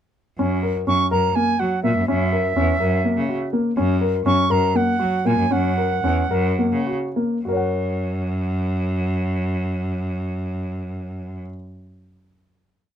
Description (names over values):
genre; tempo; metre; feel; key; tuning
contemporary instrumental, chamber music in an uneven meter; 202-249 BPM (eighths); 7/8; straight; F# mixolydian; A4 = 441 Hz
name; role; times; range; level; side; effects
dark concert grand piano; arpeggios; 0.4-11.5 s; A#3 to F#5; -22 LUFS; left 2 dB; none
clear cello; bass; 0.4-11.4 s; E2 to F#3; -23 LUFS; equal; none
bright reedy wooden flute; melody; 0.9-6.9 s; E5 to C#6; -22 LUFS; right 4 dB; none
room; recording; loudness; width
little or no reverb; close, detailed microphones; -19 LUFS; side -9 dB against mid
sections
0.4-7.5 A section; 7.5-11.6 final chord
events
slowing down 3.8-7.5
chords
0.4 F#7; 7.5 F#